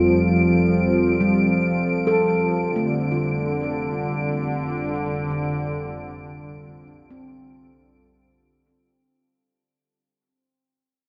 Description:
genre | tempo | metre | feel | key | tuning
ambient | free time | none | none | F major | A4 = 441 Hz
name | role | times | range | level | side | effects
warm analog pad | sustained chords | 0.0-8.9 s | D3 to A4 | -24 LUFS | equal | chorus, tremolo
warm symphonic double bass section | bass | 0.0-8.8 s | F1 | -36 LUFS | equal | none
muted studio violin section | texture | 0.0-8.9 s | D7 | -33 LUFS | equal | none
handpan | arpeggios | 1.2-9.8 s | G3 to A4 | -28 LUFS | equal | diffuse ambient delay
room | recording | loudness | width
wet cathedral reverb, RT60 6.1 s | in a vast, echoing space, nothing above 7.6 kHz | -22 LUFS | mono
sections
0.0-8.9 A section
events
fade-out on double bass section 0.0-8.9; filter sweep on analog synth pad 0.0-8.9; fade-out 0.6-8.9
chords
0.0 F69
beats
free time

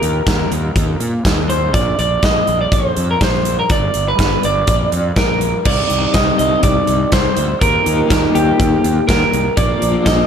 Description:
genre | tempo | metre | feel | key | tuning
indie rock | 122 BPM | 4/4 | straight | C minor | A4 = 441 Hz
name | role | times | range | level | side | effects
electric guitar through a small old amp | melody | 0.0-10.3 s | G4 to Eb5 | -17 LUFS | right 1 dB | tape echo
crunchy overdriven guitar | riff | 0.0-10.3 s | F3 to G4 | -24 LUFS | left 7 dB | tremolo
electric guitar through a small old amp | riff | 0.0-10.3 s | G2 to Bb4 | -25 LUFS | right 6 dB | lush chorus
fuzz fingered electric bass | bass | 0.0-10.2 s | G1 to Bb2 | -20 LUFS | equal | overdrive
big rock drum kit | drums | 0.0-10.2 s | crash cymbal, hi-hat, kick drum, snare drum | -17 LUFS | equal | none
room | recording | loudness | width
light reverb, small room ambience | none | -13 LUFS | side -7 dB against mid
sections
0.0-5.7 A section; 5.7-10.3 B section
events
none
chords
0.0 Ebadd9; 1.7 Bb; 3.7 G; 4.7 Bb; 5.7 Cmadd9; 7.6 Ebadd9; 9.6 Bb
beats
0.27 0.76 1.25 | 1.74 2.23 2.72 3.21 | 3.70 4.19 4.68 5.17 | 5.66 6.15 6.64 7.13 | 7.62 8.11 8.60 9.08 | 9.57 10.06

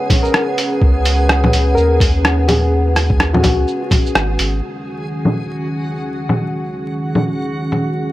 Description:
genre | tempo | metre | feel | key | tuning
future garage | 126 BPM | 4/4 | swing 60% on 16ths | Eb minor | A4 = 440 Hz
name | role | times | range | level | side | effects
dark analog pad | sustained chords | 0.0-8.1 s | Eb3 to Gb5 | -20 LUFS | equal | chorus, sidechain pumping
backwards swelling texture | texture | 0.0-8.1 s | Gb4 to Ab5 | -30 LUFS | right 1 dB | built-in reverb
electronic kick drum | drums | 0.1-4.0 s | none | -15 LUFS | equal | overdrive
lo-fi sampler-style drum kit | drums | 0.1-7.8 s | bongos, hi-hat, rim click, shaker | -17 LUFS | equal | overdrive, low-pass filter on perc, low-pass filter on snare, low-pass filter on hats, low-pass filter on room
soft struck synth lead | melody | 0.2-4.0 s | Gb4 to Bb4 | -22 LUFS | left 2 dB | chorus, tape echo
warm sub bass | bass | 0.8-4.6 s | Ab1 to Eb2 | -16 LUFS | equal | sidechain pumping
room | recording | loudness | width
light reverb | vinyl crackle | -14 LUFS | side -16 dB against mid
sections
0.0-4.6 A section; 4.6-8.1 B section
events
filter sweep on drum 4.6-8.1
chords
0.0 Db7sus4; 4.6 Ebm7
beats
0.34 | 0.82 1.29 1.77 2.25 | 2.72 3.20 3.67 4.15 | 4.63 5.10 5.58 6.05 | 6.53 7.01 7.48 7.96

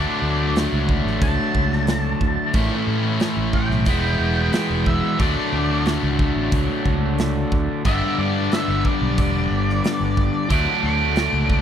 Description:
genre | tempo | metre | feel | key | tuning
blues rock power trio and southern rock | 90 BPM | 4/4 | straight | unclear | A4 = 440 Hz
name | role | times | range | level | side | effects
octave-fuzz lead guitar | melody | 0.0-11.6 s | D5 to D6 | -26 LUFS | right 1 dB | distortion
percussive tonewheel organ | sustained chords | 0.0-11.6 s | B3 to D#5 | -34 LUFS | right 4 dB | slow rotary speaker
distorted electric guitar | riff | 0.0-11.6 s | G2 to E4 | -22 LUFS | left 2 dB | distortion
fingered electric bass | bass | 0.0-11.6 s | E1 to A2 | -23 LUFS | equal | none
big rock drum kit | drums | 0.6-11.6 s | hi-hat, kick drum, snare drum | -23 LUFS | right 1 dB | none
room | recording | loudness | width
small room ambience | dry, close 1970s-style studio recording | -18 LUFS | side -9 dB against mid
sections
0.0-11.6 A section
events
none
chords
0.0 D; 2.6 A; 3.9 E; 5.2 D; 7.9 G; 10.5 D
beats
0.56 1.22 1.89 | 2.55 3.21 3.88 4.54 | 5.20 5.87 6.53 7.19 | 7.86 8.52 9.18 9.84 | 10.51 11.17

